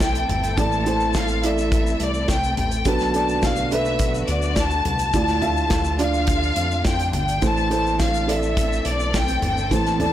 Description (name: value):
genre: piano-driven pop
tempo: 105 BPM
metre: 4/4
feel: straight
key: A minor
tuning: A4 = 440 Hz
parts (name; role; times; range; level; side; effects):
- warm symphonic violin section; melody; 0.0-10.1 s; D5 to A5; -24 LUFS; left 3 dB; none
- dark upright piano; accompaniment; 0.0-10.1 s; A2 to F5; -25 LUFS; right 4 dB; none
- dark studio string section; sustained chords; 0.0-10.1 s; D3 to A4; -31 LUFS; left 1 dB; none
- chorused synth bass; bass; 0.0-10.1 s; G1 to F2; -26 LUFS; equal; transformer saturation
- natural country drum kit; drums; 0.0-10.1 s; hi-hat, kick drum, snare drum, toms; -24 LUFS; equal; none
- egg shaker; percussion; 0.0-10.1 s; none; -39 LUFS; left 6 dB; none
room: light reverb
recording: blown-out, overdriven recording, overdrive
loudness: -18 LUFS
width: side -12 dB against mid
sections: 0.0-10.1 A section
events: none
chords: 0.0 Am; 2.9 Bm7; 5.1 Dmadd9; 7.4 Am